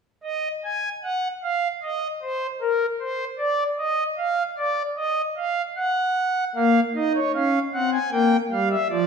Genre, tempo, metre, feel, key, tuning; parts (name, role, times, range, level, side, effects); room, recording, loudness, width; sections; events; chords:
classical, baroque-style 3-part fugue for pipe organ; 76 BPM; 4/4; straight; A4 = 439 Hz
pipe organ, foundations; solo; 0.2-9.1 s; F3 to Ab5; -21 LUFS; equal
wet recital hall reverb, RT60 1.5 s; minimal, uncompressed stereo recording; -21 LUFS; side -5 dB against mid
0.2-9.1 A section
0.2 N.C.; 6.6 Bbm; 8.1 C7 (rootless)